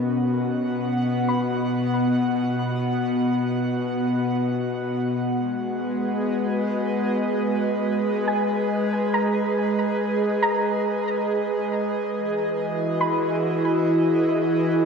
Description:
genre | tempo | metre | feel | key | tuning
ambient | free time | none | none | unclear | A4 = 440 Hz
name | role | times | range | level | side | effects
airy breathy pad | sustained chords | 0.0-14.9 s | B2 to F#5 | -21 LUFS | equal | chorus, shimmer reverb
soft round pluck | arpeggios | 1.3-14.9 s | Ab5 to B5 | -29 LUFS | right 1 dB | analog chorus, vintage 12-bit sampler grit, tape echo, shimmer reverb
room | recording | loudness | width
wet plate reverb, RT60 3.4 s | dreamy mix soaked in reverb | -21 LUFS | side -5 dB against mid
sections
0.0-14.9 A section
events
none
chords
0.0 B; 5.2 Abmadd9; 12.2 Emaj7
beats
free time

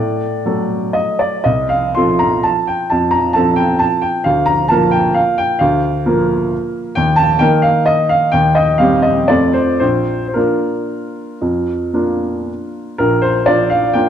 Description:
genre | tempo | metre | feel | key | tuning
classical, piano waltz | 110-141 BPM | 3/4 | rubato | Bb major | A4 = 440 Hz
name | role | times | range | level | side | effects
clear upright piano | solo | 0.0-14.1 s | Bb1 to C6 | -13 LUFS | equal | none
room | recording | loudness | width
moderate recital hall reverb, RT60 1.8 s | dark, warm production | -12 LUFS | side -9 dB against mid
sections
0.0-13.0 A section; 13.0-14.1 B section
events
none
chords
0.0 D; 1.4 F/C; 4.3 Bb/D; 7.0 Eb5; 8.3 Cm/Eb; 9.3 F; 9.8 Bb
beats
0.45 0.95 | 1.45 1.96 2.46 | 2.92 3.36 3.81 | 4.26 4.71 5.17 | 5.61 6.06 6.52 | 6.96 7.40 7.87 | 8.33 8.79 9.29 | 9.81 10.36 10.90 | 11.42 11.94 12.48 | 13.00 13.48 13.95

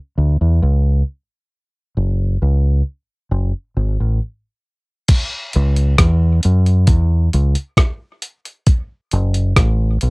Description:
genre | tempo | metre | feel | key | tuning
dub reggae | 67 BPM | 4/4 | straight | C# phrygian | A4 = 440 Hz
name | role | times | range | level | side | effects
deep dub fingered electric bass | bass | 0.2-10.1 s | F#1 to F#2 | -14 LUFS | equal | none
dusty soul sampler-style drum kit | drums | 5.1-10.1 s | crash cymbal, hi-hat, kick drum, rim click | -14 LUFS | equal | cassette tape
room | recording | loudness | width
little or no reverb | home recording on cassette | -14 LUFS | side -35 dB against mid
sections
0.0-5.1 A section; 5.1-10.1 B section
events
break 4.2-5.1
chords
none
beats
0.61 | 1.51 2.40 3.30 4.20 | 5.09 5.99 6.88 7.78 | 8.68 9.57

